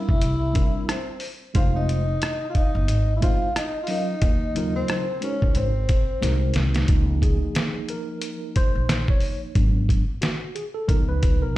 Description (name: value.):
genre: hip hop, jazz-hop.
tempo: 90 BPM.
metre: 4/4.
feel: swing 60% on 16ths.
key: Db major.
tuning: A4 = 440 Hz.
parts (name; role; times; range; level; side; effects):
vibraphone with soft mallets; melody; 0.0-6.5 s; C5 to F5; -30 LUFS; equal; none.
breathy tenor saxophone; second line; 0.0-6.5 s; C4 to F4; -32 LUFS; left 2 dB; none.
mellow tine electric piano; accompaniment; 0.0-11.6 s; Db3 to Db5; -28 LUFS; right 1 dB; medium stereo tremolo.
upright bass; bass; 0.1-11.6 s; F1 to Eb2; -23 LUFS; equal; none.
trip hop sampler-style drum kit; drums; 0.1-11.4 s; hi-hat, kick drum, rim click, snare drum; -22 LUFS; equal; none.
room: little or no reverb.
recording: played on a big sound system in a bare room, stone room reverb.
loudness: -20 LUFS.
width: side -16 dB against mid.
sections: 0.0-6.9 A section; 6.9-11.6 B section.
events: drum fill 6.2-6.9; tine electric piano solo 6.9-11.6.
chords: 0.2 C7; 1.6 Fm7; 4.2 Ebm7; 5.6 Ab7; 6.9 Db6; 9.6 Abm7b5; 10.9 Db7.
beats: 0.22 0.89 | 1.55 2.22 2.89 3.55 | 4.22 4.89 5.55 6.22 | 6.89 7.55 8.22 8.89 | 9.55 10.22 10.89 11.55.